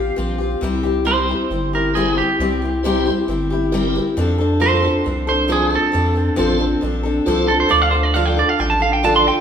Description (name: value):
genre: country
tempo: 136 BPM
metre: 4/4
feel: straight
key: F major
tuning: A4 = 440 Hz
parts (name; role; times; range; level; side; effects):
- picked steel-string acoustic guitar; accompaniment; 0.0-9.4 s; C3 to A4; -20 LUFS; left 3 dB; none
- round analog bass; bass; 0.0-9.3 s; G1 to F2; -22 LUFS; equal; none
- clean electric guitar; second line; 1.1-9.4 s; G4 to C6; -18 LUFS; right 4 dB; none
- tonewheel organ; accompaniment; 1.1-9.3 s; E4 to D5; -24 LUFS; right 2 dB; slow rotary speaker, overdrive, chorus vibrato
room: wet large studio reverb, RT60 1.3 s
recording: band playing live in one room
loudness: -15 LUFS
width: side -8 dB against mid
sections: 0.6-9.4 A section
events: clean electric guitar solo 0.6-9.4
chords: 0.0 Fsus2; 0.6 C; 4.2 F6